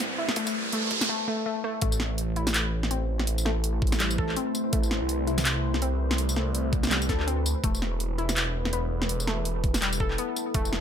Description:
half-time drum and bass; 165 BPM; 4/4; swing 58% on 16ths, half-time; A minor; A4 = 440 Hz
deep dark ambient pad; sustained chords; 0.0-10.8 s; A3 to C5; -34 LUFS; equal; chorus, built-in reverb, sidechain pumping
phased detuned saw bass; bass; 0.0-10.8 s; E1 to D2; -29 LUFS; equal; phaser, high-pass filter
drum and bass drum kit; drums; 0.0-10.8 s; handclaps, hi-hat, snare drum, tambourine; -29 LUFS; equal; overdrive
riser; sound effects; 0.0-1.1 s; -30 LUFS; right 3 dB
warbly dusty pluck; arpeggios; 0.2-10.7 s; G3 to A4; -33 LUFS; left 3 dB; chorus, tape echo
electronic kick drum; drums; 0.4-10.6 s; -27 LUFS; equal; overdrive, high-pass filter on kick, high-pass filter on room
light reverb; -24 LUFS; side -8 dB against mid
0.0-1.8 A section; 1.8-10.8 B section
build-up 0.0-1.8; riser 0.0-1.1; filter sweep on ambient pad 0.0-1.8; filter sweep on synth pluck 0.0-1.8; break 1.1-1.8; drop 1.8-10.8
0.0 Amadd9; 7.6 Esus4

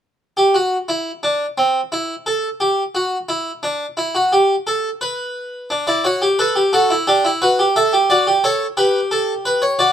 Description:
classical, baroque-style 3-part fugue for harpsichord; 88 BPM; 4/4; straight; A4 = 440 Hz
harpsichord; solo; 0.4-9.9 s; C4 to E5; -15 LUFS; equal
light reverb; minimal, uncompressed stereo recording; -15 LUFS; side -9 dB against mid
0.2-9.9 A section
0.2 N.C.; 5.7 D; 7.1 G/D; 8.4 A7

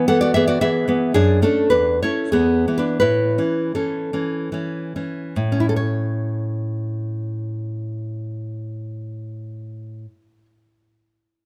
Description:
romantic piece for solo classical guitar; 68-117 BPM; 3/4; rubato; A major; A4 = 441 Hz
nylon-string guitar; solo; 0.0-10.5 s; E2 to F#5; -21 LUFS; equal
light reverb; close, detailed microphones; -21 LUFS; mono
0.0-5.4 A section; 5.4-10.2 B section
slowing down 0.3-5.4
0.0 E; 1.1 D/F#; 1.7 A/E; 2.3 E; 3.0 A

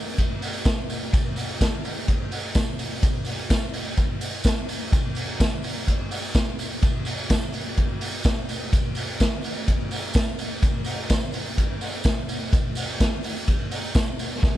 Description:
indie pop; 126 BPM; 4/4; straight
vintage drum kit; drums; 0.2-14.5 s; hi-hat, kick drum, ride cymbal, snare drum; -22 LUFS; equal
tambourine; percussion; 0.2-14.5 s; -39 LUFS; right 4 dB
light reverb, small room ambience; -22 LUFS; side -14 dB against mid
0.0-14.6 A section

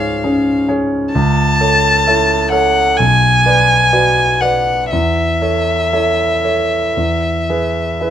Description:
classical, romantic duo for violin and grand piano; 57-66 BPM; 4/4; rubato; A major; A4 = 442 Hz
rich violin; melody; 0.0-8.1 s; E5 to A5; -14 LUFS; left 2 dB
warm concert grand piano; accompaniment; 0.0-8.1 s; B1 to D5; -15 LUFS; right 1 dB
light reverb; -11 LUFS; side -10 dB against mid
0.0-8.1 A section
0.0 C#; 1.1 A/C#; 3.0 Bm; 4.9 A/E; 7.0 E

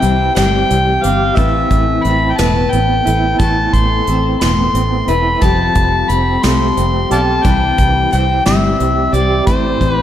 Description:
folk rock and heartland rock; 59 BPM (dotted quarters); 6/8; straight; A minor; A4 = 435 Hz
overdriven harmonica; melody; 0.0-10.0 s; C5 to C6; -16 LUFS; left 2 dB; ping-pong delay
picked steel-string acoustic guitar; accompaniment; 0.0-10.0 s; A2 to C5; -19 LUFS; left 4 dB; analog chorus
electric guitar through a small old amp; riff; 0.0-10.0 s; A2 to G4; -20 LUFS; right 4 dB; tremolo
fingered electric bass; bass; 0.0-10.0 s; E1 to C2; -17 LUFS; right 1 dB
soft brush drum kit; drums; 0.0-10.0 s; hi-hat, kick drum, snare drum; -19 LUFS; right 1 dB
moderate plate reverb, RT60 2.7 s; dreamy mix soaked in reverb; -11 LUFS; side -11 dB against mid
0.0-10.0 A section
0.0 C; 1.4 Amadd9; 5.4 Fadd9; 7.4 C; 9.5 Am

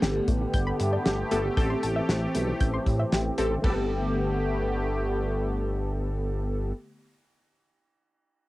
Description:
synth-pop; 116 BPM; 4/4; straight; G major; A4 = 442 Hz
funky polysynth comp; accompaniment; 0.0-6.7 s; B3 to A4; -31 LUFS; left 1 dB; chorus, cassette tape
sweeping resonant pad; sustained chords; 0.0-6.7 s; D3 to G4; -30 LUFS; equal; chorus, cassette tape
soft round pluck; arpeggios; 0.0-6.8 s; D3 to G6; -34 LUFS; left 1 dB; chorus, cassette tape, analog delay
smooth synth bass; bass; 0.0-6.7 s; G1 to A2; -29 LUFS; equal
damped 70s drum kit; drums; 0.0-3.8 s; hi-hat, kick drum, ride cymbal, snare drum; -28 LUFS; equal; cassette tape
light reverb; home recording on cassette; -24 LUFS; side -18 dB against mid
0.0-3.6 A section; 3.6-7.8 B section
0.0 Gadd9; 1.6 Am7; 3.6 Gadd9

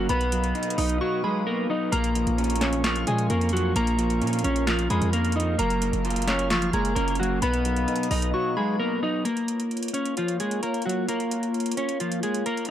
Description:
hip hop, trap; 131 BPM; 4/4; half-time; Bb phrygian; A4 = 438 Hz
clean electric guitar; melody; 0.0-12.7 s; F3 to D#5; -26 LUFS; equal
electric guitar at the edge of break-up; accompaniment; 0.0-9.3 s; Bb2 to F4; -29 LUFS; right 2 dB
warbly tape-like pad; sustained chords; 0.0-12.7 s; Bb3 to F6; -33 LUFS; equal; chorus, built-in reverb
hard-hitting 808-style bass; bass; 0.0-8.3 s; Gb1 to Bb2; -27 LUFS; equal
soft synth bell; second line; 0.1-8.8 s; Ab5 to Db6; -33 LUFS; left 1 dB; chorus, tape echo
booming analog drum machine; drums; 0.1-12.7 s; handclaps, hi-hat, snare drum; -32 LUFS; right 1 dB; overdrive
digital ambience; dark, warm production; -22 LUFS; side -10 dB against mid
0.0-9.3 A section; 9.3-12.7 B section
drums muted 1.0-1.9, 8.3-9.3
0.1 B; 1.9 Bbm; 5.6 Gbmaj7; 7.4 B; 9.3 Bbm

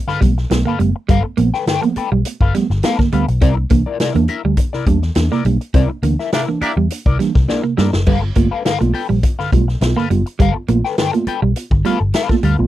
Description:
funk; 103 BPM; 4/4; straight; G mixolydian; A4 = 440 Hz
electric guitar at the edge of break-up; accompaniment; 0.1-12.6 s; E4 to G5; -21 LUFS; left 8 dB; wah
mellow tine electric piano; stabs; 0.1-12.7 s; G2 to F4; -22 LUFS; right 4 dB; slow stereo tremolo
vintage drum kit; drums; 0.1-12.6 s; crash cymbal, hi-hat, kick drum, snare drum; -18 LUFS; left 1 dB
clean electric guitar; riff; 0.2-12.5 s; G3 to C4; -19 LUFS; right 6 dB
vintage muted picked electric bass; bass; 0.2-12.7 s; F#1 to G2; -17 LUFS; left 1 dB
clear horn section; second line; 6.3-6.7 s; Bb3 to D5; -21 LUFS; right 3 dB
little or no reverb; dry, close 1970s-style studio recording; -14 LUFS; side -14 dB against mid
0.0-8.1 A section; 8.1-12.7 A section
band accent 5.7-8.1; drum fill 7.5-8.1
0.0 G9; 3.4 C9; 8.1 G9

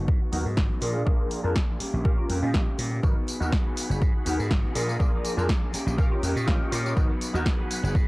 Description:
filtered disco house; 122 BPM; 4/4; swing 53% on 16ths; G# dorian; A4 = 440 Hz
electric guitar at the edge of break-up; riff; 0.0-8.1 s; E#3 to G#4; -34 LUFS; equal; sidechain pumping, low-pass filter
glassy slap bass; bass; 0.0-8.1 s; F#1 to A#2; -28 LUFS; equal; sidechain pumping, low-pass filter
electronic kick drum; drums; 0.1-8.1 s; -24 LUFS; equal; overdrive
funky polysynth comp; accompaniment; 0.3-7.5 s; B3 to D#5; -30 LUFS; equal; chorus, phaser, sidechain pumping, low-pass filter
punchy analog drum machine; drums; 0.3-8.1 s; hi-hat, snare drum, tambourine; -32 LUFS; equal; overdrive, sidechain pumping on hats, sidechain pumping on perc
phased string machine; sustained chords; 3.0-8.1 s; G4 to C#6; -37 LUFS; right 1 dB; ensemble chorus, phaser, vintage 12-bit sampler grit, sidechain pumping, low-pass filter
tambourine; percussion; 3.0-8.1 s; -59 LUFS; left 1 dB
little or no reverb; dry, gritty hardware recording, transformer saturation; -23 LUFS; side -22 dB against mid
0.0-8.1 A section
filter sweep 0.0-8.1
0.0 G#m7; 0.8 A#7; 1.8 D#7/A#; 3.0 G#m7; 4.8 A#7; 5.7 D#7/A#; 7.0 G#m7

